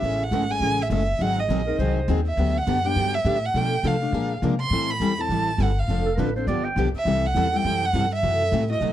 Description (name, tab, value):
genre	acoustic string swing (jazz manouche)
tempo	205 BPM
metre	4/4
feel	swing 59% on 8ths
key	unclear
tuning	A4 = 443 Hz
part	dark violin	melody	0.0-8.9 s	D#5 to B#5	-25 LUFS	right 2 dB	none
part	picked steel-string acoustic guitar	accompaniment	0.0-8.9 s	B2 to A4	-27 LUFS	left 6 dB	none
part	picked steel-string acoustic guitar	accompaniment	0.0-8.9 s	B2 to B4	-30 LUFS	right 6 dB	none
part	upright bass	bass	0.0-8.9 s	F1 to C3	-25 LUFS	equal	none
part	breathy clarinet	second line	1.7-2.1, 6.1-6.8 s	A4 to G5	-32 LUFS	right 4 dB	none
room	studio ambience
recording	dry, close 1970s-style studio recording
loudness	-20 LUFS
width	side -12 dB against mid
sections	0.0-8.9 A section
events	none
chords	0.0 Amaj7; 1.2 G#9; 2.4 Gmaj7; 3.5 Bm7b5; 4.1 A#9; 4.7 Am7; 5.9 Dm7; 6.5 G7; 7.1 C6; 8.2 F#m7b5